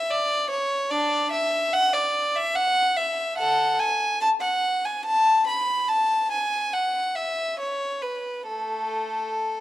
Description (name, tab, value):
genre	classical, baroque-style suite movement for unaccompanied violin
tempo	71 BPM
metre	3/4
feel	uneven beats, rubato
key	A major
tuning	A4 = 442 Hz
part	warm violin	solo	0.0-9.6 s	A3 to B5	-22 LUFS	equal	none
room	moderate large studio reverb, RT60 1.2 s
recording	dark, warm production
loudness	-21 LUFS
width	side -14 dB against mid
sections	0.0-9.6 A section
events	none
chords	none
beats	0.10 | 0.92 1.74 2.56 | 3.39 4.22 5.06 | 5.90 6.74 7.60 | 8.48 9.36